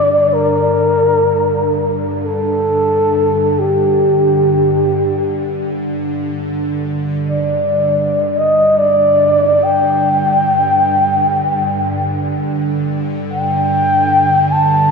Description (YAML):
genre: world meditative, free-time meditation music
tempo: free time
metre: none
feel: none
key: G hirajoshi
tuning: A4 = 440 Hz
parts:
  - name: breathy flugelhorn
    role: melody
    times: 0.0-14.9 s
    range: G4 to A5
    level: -13 LUFS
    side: left 1 dB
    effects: diffuse ambient delay
  - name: bowed-like drone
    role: drone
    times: 0.0-14.9 s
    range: G2 to D3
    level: -19 LUFS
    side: right 2 dB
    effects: built-in reverb
room: wet church reverb, RT60 3.5 s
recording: dark, warm production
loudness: -12 LUFS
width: side -4 dB against mid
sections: 0.0-14.9 A section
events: none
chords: none